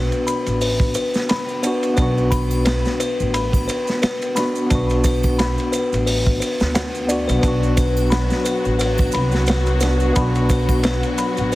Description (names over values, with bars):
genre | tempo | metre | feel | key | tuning
trip hop | 88 BPM | 4/4 | swing 56% on 16ths | B phrygian | A4 = 440 Hz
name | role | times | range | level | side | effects
bright tine electric piano | accompaniment | 0.0-11.6 s | B3 to F#4 | -23 LUFS | left 1 dB | tremolo, tape echo
music box | arpeggios | 0.0-11.6 s | B4 to B5 | -24 LUFS | left 2 dB | tape echo
upright bass | bass | 0.0-11.6 s | A1 to D2 | -21 LUFS | right 1 dB | none
crunchy breakbeat drum kit | drums | 0.1-11.6 s | hi-hat, kick drum, ride cymbal, snare drum | -22 LUFS | equal | vintage 12-bit sampler grit
maracas and triangle | percussion | 0.1-11.6 s | none | -34 LUFS | right 6 dB | none
dark studio string section | sustained chords | 7.4-11.6 s | F#3 to F#4 | -27 LUFS | left 1 dB | none
room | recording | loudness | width
studio reverb | heavily compressed radio sound | -16 LUFS | side -17 dB against mid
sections
0.0-11.6 A section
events
none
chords
0.0 Bm